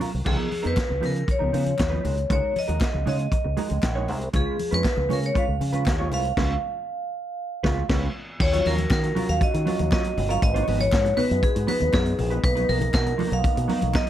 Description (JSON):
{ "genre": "disco", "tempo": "118 BPM", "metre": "4/4", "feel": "straight", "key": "unclear", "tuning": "A4 = 440 Hz", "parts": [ { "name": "mellow electric guitar", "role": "accompaniment", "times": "0.0-14.1 s", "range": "F3 to Db5", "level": "-29 LUFS", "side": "right 3 dB", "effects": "analog chorus" }, { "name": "vintage drum kit", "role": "drums", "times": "0.0-14.1 s", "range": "crash cymbal, hi-hat, kick drum, snare drum", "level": "-26 LUFS", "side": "equal", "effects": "none" }, { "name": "congas", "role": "percussion", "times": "0.0-13.9 s", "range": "none", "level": "-35 LUFS", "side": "left 6 dB", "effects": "none" }, { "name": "fingered electric bass with an envelope filter", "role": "bass", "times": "0.1-13.9 s", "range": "G1 to Eb3", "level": "-26 LUFS", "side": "equal", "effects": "none" }, { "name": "vibraphone with hard mallets", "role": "melody", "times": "0.3-14.1 s", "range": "Ab4 to F5", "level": "-27 LUFS", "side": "equal", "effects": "none" }, { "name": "group handclap", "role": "percussion", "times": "0.8-14.1 s", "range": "none", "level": "-40 LUFS", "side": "left 3 dB", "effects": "none" }, { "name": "mellow French horn section", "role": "sustained chords", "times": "8.4-14.1 s", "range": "Eb3 to Cb5", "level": "-33 LUFS", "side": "left 2 dB", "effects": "none" } ], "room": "light reverb, small room reverb", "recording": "dark, warm production", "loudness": "-21 LUFS", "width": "side -11 dB against mid", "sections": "0.3-8.4 A section; 8.4-14.1 B section", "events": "band accent 6.4-8.4", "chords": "0.3 Db13; 2.0 Gb69/Db; 4.3 Db7; 8.4 Ebm9; 10.4 Abm7; 12.4 Bmaj7" }